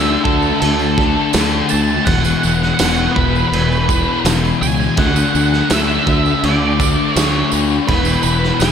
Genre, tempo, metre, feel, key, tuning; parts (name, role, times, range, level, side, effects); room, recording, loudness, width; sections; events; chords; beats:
rock, shoegaze and dream pop; 82 BPM; 4/4; straight; A4 = 439 Hz
octave-fuzz lead guitar; melody; 0.0-8.7 s; A4 to A5; -19 LUFS; right 5 dB; distortion, analog delay
thick fuzz guitar; riff; 0.0-8.7 s; E2 to D4; -17 LUFS; left 6 dB; distortion, analog chorus
modern bright fingered electric bass; bass; 0.0-8.7 s; E1 to D2; -19 LUFS; right 2 dB
loose indie drum kit; drums; 0.3-8.7 s; crash cymbal, kick drum, snare drum; -20 LUFS; right 2 dB
tambourine; percussion; 0.4-8.7 s; -28 LUFS; right 17 dB
moderate lush hall reverb, RT60 1.9 s, studio ambience; dreamy mix soaked in reverb; -12 LUFS; side -8 dB against mid
0.0-8.7 A section
0.0 D5; 2.1 Esus2; 5.0 Dsus2; 7.9 E5
0.61 1.34 | 2.07 2.79 3.52 4.25 | 4.97 5.70 6.43 7.16 | 7.88 8.61